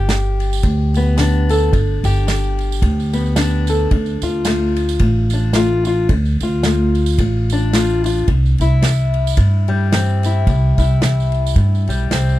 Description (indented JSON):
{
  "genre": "acoustic folk duo or small band",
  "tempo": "110 BPM",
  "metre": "4/4",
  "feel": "swing 57% on 8ths",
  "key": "unclear",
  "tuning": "A4 = 439 Hz",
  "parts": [
    { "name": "fingerpicked steel-string acoustic guitar", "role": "accompaniment", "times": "0.0-12.4 s", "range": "G2 to A4", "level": "-20 LUFS", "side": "left 3 dB", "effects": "none" },
    { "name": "upright bass", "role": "bass", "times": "0.0-12.4 s", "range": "G1 to G2", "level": "-16 LUFS", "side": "equal", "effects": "none" },
    { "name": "unplugged drum kit", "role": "drums", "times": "0.1-12.3 s", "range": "kick drum, ride cymbal, snare drum", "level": "-19 LUFS", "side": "right 1 dB", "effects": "none" },
    { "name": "tambourine", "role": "percussion", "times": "0.1-12.4 s", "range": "none", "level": "-31 LUFS", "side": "right 23 dB", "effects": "none" }
  ],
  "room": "little or no reverb",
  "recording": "dry, close 1970s-style studio recording",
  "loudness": "-14 LUFS",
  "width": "side -15 dB against mid",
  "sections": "0.0-12.4 A section",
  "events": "none",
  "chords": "0.0 G; 3.9 Dm; 8.3 C",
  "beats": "0.10 0.64 1.19 | 1.73 2.28 2.82 3.37 | 3.92 4.46 5.01 5.55 | 6.10 6.64 7.19 7.74 | 8.28 8.83 9.38 9.92 | 10.47 11.02 11.56 12.11"
}